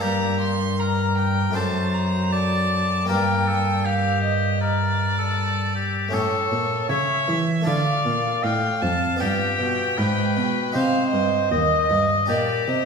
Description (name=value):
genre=classical, baroque-style sonata movement with continuo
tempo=78 BPM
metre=4/4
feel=straight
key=G minor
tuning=A4 = 440 Hz
part: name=clear oboe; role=melody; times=0.0-12.9 s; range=G4 to F5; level=-24 LUFS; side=left 5 dB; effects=none
part: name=rich violin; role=second line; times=0.0-12.9 s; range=C#5 to C6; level=-27 LUFS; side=right 6 dB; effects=none
part: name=harpsichord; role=accompaniment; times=0.0-12.9 s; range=Eb2 to A4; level=-27 LUFS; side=equal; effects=none
part: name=rich cello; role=bass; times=0.0-12.9 s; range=Eb2 to E3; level=-24 LUFS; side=right 1 dB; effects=none
room=wet recital hall reverb, RT60 1.4 s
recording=heard from further back in the room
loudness=-19 LUFS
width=side -5 dB against mid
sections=0.0-12.9 A section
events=none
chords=0.0 Gm; 1.6 D7/F#; 3.1 Gm; 6.1 A7; 7.7 Dm; 9.2 G7; 10.8 Cm; 12.3 Gm/Bb